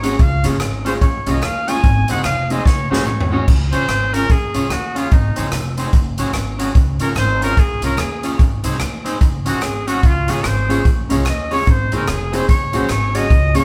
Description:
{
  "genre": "ska",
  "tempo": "146 BPM",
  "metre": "4/4",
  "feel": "swing 61% on 8ths",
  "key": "Db major",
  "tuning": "A4 = 436 Hz",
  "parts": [
    { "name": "warm trumpet", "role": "melody", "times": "0.0-13.6 s", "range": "Eb4 to Ab5", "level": "-24 LUFS", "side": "equal", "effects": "none" },
    { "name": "electric guitar at the edge of break-up", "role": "accompaniment", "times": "0.0-13.6 s", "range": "C4 to Db5", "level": "-26 LUFS", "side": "equal", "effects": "dub echo" },
    { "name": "dark upright piano", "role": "stabs", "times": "0.0-3.4, 10.3-13.6 s", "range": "Ab3 to Ab4", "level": "-27 LUFS", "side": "equal", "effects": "none" },
    { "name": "upright bass", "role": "bass", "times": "0.0-13.6 s", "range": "F1 to Eb2", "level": "-24 LUFS", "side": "equal", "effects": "none" },
    { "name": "swinging big-band drum kit", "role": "drums", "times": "0.0-13.6 s", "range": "crash cymbal, hi-hat, kick drum, rim click, snare drum, toms", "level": "-20 LUFS", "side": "equal", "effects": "none" },
    { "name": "group handclap", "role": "percussion", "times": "0.6-13.0 s", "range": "none", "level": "barely audible", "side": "none", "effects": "none" }
  ],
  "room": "moderate large studio reverb, RT60 1.1 s",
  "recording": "band playing live in one room",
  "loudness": "-17 LUFS",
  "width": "mono",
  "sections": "0.0-3.5 A section; 3.5-13.6 A section",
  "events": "trumpet solo 0.0-3.5, 3.5-13.6; drum fill 2.7-3.5",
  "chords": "0.2 Db; 1.8 Ab; 2.7 Gbsus2; 3.5 Db; 5.1 Ab; 5.9 Gbsus2; 6.8 Db; 8.4 Ab; 9.2 Gbsus2; 10.0 Db; 11.7 Ab; 12.5 Gbsus2",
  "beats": "| 0.20 0.61 1.02 1.43 | 1.84 2.25 2.66 3.07 | 3.48 3.89 4.30 4.71 | 5.12 5.53 5.94 6.35 | 6.76 7.17 7.58 7.99 | 8.40 8.81 9.22 9.62 | 10.03 10.44 10.85 11.26 | 11.67 12.08 12.49 12.90 | 13.30"
}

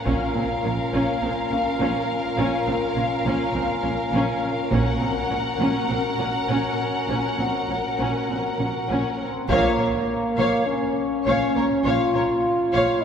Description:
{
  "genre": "cinematic, epic orchestral film score",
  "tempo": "102 BPM",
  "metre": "4/4",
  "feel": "straight",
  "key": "Bb minor",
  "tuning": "A4 = 439 Hz",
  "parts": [
    { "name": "warm symphonic violin section", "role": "melody", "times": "0.0-13.0 s", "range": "Db5 to Gb5", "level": "-28 LUFS", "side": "left 2 dB", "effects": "none" },
    { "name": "dark symphonic violin section", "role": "second line", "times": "0.0-13.0 s", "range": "Bb4 to Db5", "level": "-28 LUFS", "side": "left 2 dB", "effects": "none" },
    { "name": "rich symphonic viola section", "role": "accompaniment", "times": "0.1-13.0 s", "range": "C4 to Db5", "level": "-28 LUFS", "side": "right 1 dB", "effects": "none" },
    { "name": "warm French horn section", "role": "sustained chords", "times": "0.1-13.0 s", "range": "Bb3 to Gb4", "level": "-26 LUFS", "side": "left 1 dB", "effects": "none" },
    { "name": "warm symphonic cello section", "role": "bass", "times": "0.1-12.8 s", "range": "Bb2", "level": "-30 LUFS", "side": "right 3 dB", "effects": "none" },
    { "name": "warm symphonic double bass section", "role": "bass", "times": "0.1-12.8 s", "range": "Bb1", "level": "-30 LUFS", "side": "right 2 dB", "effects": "none" },
    { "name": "taiko ensemble", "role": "drums", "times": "0.1-1.2, 4.7-5.9, 9.5-10.6 s", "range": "none", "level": "-32 LUFS", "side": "right 1 dB", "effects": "none" }
  ],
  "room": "wet church reverb, RT60 3.4 s",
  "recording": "recorded in a church or concert hall",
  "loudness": "-20 LUFS",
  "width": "side -8 dB against mid",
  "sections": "0.0-9.5 A section; 9.5-13.0 B section",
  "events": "build-up 0.0-9.5; band accent 9.5-10.1",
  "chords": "0.1 Bbm; 4.7 Gb/Bb; 9.5 Bbm",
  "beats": "| 0.06 0.64 1.22 1.80 | 2.38 2.96 3.55 4.13 | 4.71 5.30 5.89 6.49 | 7.08 7.69 8.29 8.90 | 9.50 10.09 10.68 11.26 | 11.85 12.44 13.03"
}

